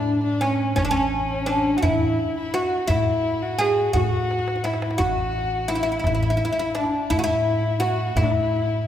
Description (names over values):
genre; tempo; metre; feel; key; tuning
Persian modal ensemble; 57 BPM (dotted quarters); 6/8; straight; A dastgah mahur; A4 = 436 Hz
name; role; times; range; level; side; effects
oud; melody; 0.0-8.9 s; C#4 to G#4; -23 LUFS; equal; none
warm kamancheh; second line; 0.0-8.9 s; C#4 to F#4; -27 LUFS; left 3 dB; none
upright bass; bass; 0.0-8.9 s; A1 to A2; -27 LUFS; equal; none
tombak; percussion; 0.1-8.3 s; none; -29 LUFS; equal; none
room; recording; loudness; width
wet concert hall reverb, RT60 1.9 s; recorded in a church or concert hall; -20 LUFS; side -10 dB against mid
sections
0.0-8.9 A section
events
drum fill 4.3-5.0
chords
none